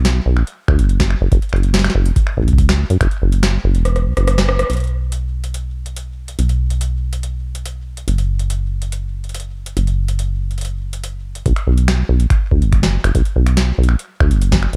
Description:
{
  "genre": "IDM",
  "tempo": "142 BPM",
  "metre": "4/4",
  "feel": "straight",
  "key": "B minor",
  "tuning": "A4 = 443 Hz",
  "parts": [
    { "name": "deep acid bass", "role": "bass", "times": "0.0-14.8 s", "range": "E1 to F#2", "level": "-18 LUFS", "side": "equal", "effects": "none" },
    { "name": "booming analog drum machine", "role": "drums", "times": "0.0-14.8 s", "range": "finger snaps, hi-hat, rim click, snare drum, toms", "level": "-24 LUFS", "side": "equal", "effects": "overdrive, tape echo" },
    { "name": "electronic kick drum", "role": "drums", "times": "0.7-3.1, 11.5-14.6 s", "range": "none", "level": "-18 LUFS", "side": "equal", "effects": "overdrive" }
  ],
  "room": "little or no reverb",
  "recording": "dark, warm production",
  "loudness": "-17 LUFS",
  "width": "mono",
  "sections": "0.0-4.7 A section; 4.7-11.5 B section; 11.5-14.8 C section",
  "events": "kick drops out 3.9-4.7; drum fill 3.9-4.7; band accent 4.6",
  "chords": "none"
}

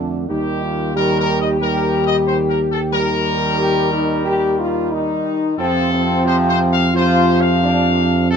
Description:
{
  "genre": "classical",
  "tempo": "91 BPM",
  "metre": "4/4",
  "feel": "straight",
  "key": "unclear",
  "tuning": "A4 = 440 Hz",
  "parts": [
    { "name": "mellow French horn section", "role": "sustained chords", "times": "0.0-8.4 s", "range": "C4 to G4", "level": "-20 LUFS", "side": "left 3 dB", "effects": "none" },
    { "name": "warm trombone section", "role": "sustained chords", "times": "0.0-8.4 s", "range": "C3 to A3", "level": "-22 LUFS", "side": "right 2 dB", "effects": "none" },
    { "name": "dark tuba", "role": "bass", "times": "0.0-8.4 s", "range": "Eb2 to F2", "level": "-20 LUFS", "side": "right 3 dB", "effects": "none" },
    { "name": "mellow trumpet section", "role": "melody", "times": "0.3-8.4 s", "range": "G4 to F5", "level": "-21 LUFS", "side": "left 3 dB", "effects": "none" }
  ],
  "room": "light reverb",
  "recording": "nothing above 11.0 kHz",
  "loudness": "-15 LUFS",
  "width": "side -7 dB against mid",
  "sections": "0.0-8.4 A section",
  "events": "none",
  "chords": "0.3 Eb; 5.6 F"
}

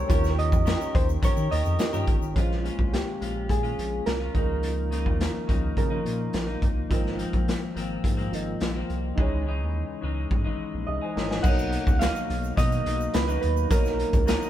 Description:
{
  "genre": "indie pop, bedroom pop",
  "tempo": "106 BPM",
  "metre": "4/4",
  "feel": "straight",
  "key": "unclear",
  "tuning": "A4 = 438 Hz",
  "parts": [
    { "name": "soft electric-piano-like synth keys", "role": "melody", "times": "0.0-6.6, 10.9-14.5 s", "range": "G4 to F#5", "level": "-30 LUFS", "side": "right 2 dB", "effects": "chorus" },
    { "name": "clean electric guitar", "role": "accompaniment", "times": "0.0-14.5 s", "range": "Ab2 to Bb4", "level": "-32 LUFS", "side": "left 5 dB", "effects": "vibrato effect" },
    { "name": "dark upright piano", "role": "accompaniment", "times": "0.0-14.5 s", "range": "Ab3 to Bb5", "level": "-36 LUFS", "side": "right 4 dB", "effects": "none" },
    { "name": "round analog bass", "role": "bass", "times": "0.0-14.4 s", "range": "G1 to Eb3", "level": "-29 LUFS", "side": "equal", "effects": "none" },
    { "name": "raw garage drum kit", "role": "drums", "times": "0.1-14.4 s", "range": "crash cymbal, hi-hat, kick drum, snare drum", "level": "-26 LUFS", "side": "equal", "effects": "none" },
    { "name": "egg shaker", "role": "percussion", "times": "0.1-2.4, 11.4-14.5 s", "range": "none", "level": "-49 LUFS", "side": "right 4 dB", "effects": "none" }
  ],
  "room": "light reverb",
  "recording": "band playing live in one room",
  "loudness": "-23 LUFS",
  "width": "side -12 dB against mid",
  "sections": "0.0-2.4 A section; 2.4-11.4 B section; 11.4-14.5 A section",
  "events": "drum fill 9.2-11.4",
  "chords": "0.1 Eb7; 2.4 Bbm7; 4.4 Db69; 6.9 Ab69; 9.2 Dbmadd9; 11.4 Bmaj7"
}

